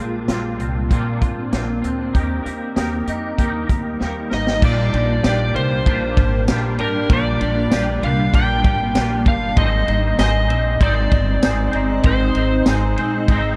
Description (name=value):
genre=dream pop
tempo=97 BPM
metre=4/4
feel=straight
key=Bb mixolydian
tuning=A4 = 440 Hz
part: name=twangy electric guitar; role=accompaniment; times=0.0-13.6 s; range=Bb2 to C5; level=-30 LUFS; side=equal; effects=harmonic tremolo, ensemble chorus
part: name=granular cloud pad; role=sustained chords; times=0.0-13.6 s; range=G3 to Eb4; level=-28 LUFS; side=equal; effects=built-in reverb
part: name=electric guitar at the edge of break-up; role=arpeggios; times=0.0-13.6 s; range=Bb2 to Ab4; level=-28 LUFS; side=equal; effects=ensemble chorus, digital delay
part: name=upright bass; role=bass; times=0.0-13.6 s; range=G1 to F2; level=-24 LUFS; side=equal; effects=none
part: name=vintage drum kit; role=drums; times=0.3-13.4 s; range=crash cymbal, hi-hat, kick drum, ride cymbal, snare drum, tambourine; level=-21 LUFS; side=equal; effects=none
part: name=overdriven slide guitar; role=melody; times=4.3-12.6 s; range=Bb4 to G5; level=-25 LUFS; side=equal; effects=digital delay
room=light reverb, small room ambience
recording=dark, warm production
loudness=-18 LUFS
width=mono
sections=0.0-4.6 A section; 4.6-13.6 B section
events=drum fill 4.0-4.6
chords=0.0 Bbadd9; 2.1 Eb; 4.6 Bb6; 9.6 Ab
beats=0.29 0.91 1.53 | 2.15 2.77 3.39 4.00 | 4.62 5.24 5.86 6.48 | 7.10 7.71 8.33 8.95 | 9.57 10.19 10.81 11.43 | 12.04 12.66 13.28